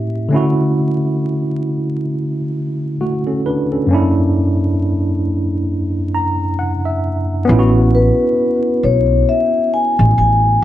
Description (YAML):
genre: hip hop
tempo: 67 BPM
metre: 4/4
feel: swing 58% on 16ths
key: A major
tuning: A4 = 438 Hz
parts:
  - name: tine electric piano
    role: accompaniment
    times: 0.0-10.6 s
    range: F#2 to A#5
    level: -16 LUFS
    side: equal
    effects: overdrive, fast stereo tremolo, cassette tape
  - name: upright bass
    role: bass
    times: 7.5-10.6 s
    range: A1 to B1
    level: -13 LUFS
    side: equal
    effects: none
  - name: vibraphone with soft mallets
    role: melody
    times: 7.9-10.6 s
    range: B4 to G#5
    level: -15 LUFS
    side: left 3 dB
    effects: none
room: moderate small room reverb, RT60 0.5 s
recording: vinyl crackle, nothing above 10.8 kHz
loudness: -14 LUFS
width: side -13 dB against mid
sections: 0.0-7.5 A section; 7.5-10.6 B section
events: tine electric piano fill 5.7-7.5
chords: 0.3 Dmaj7; 3.9 F#7b13; 7.5 A69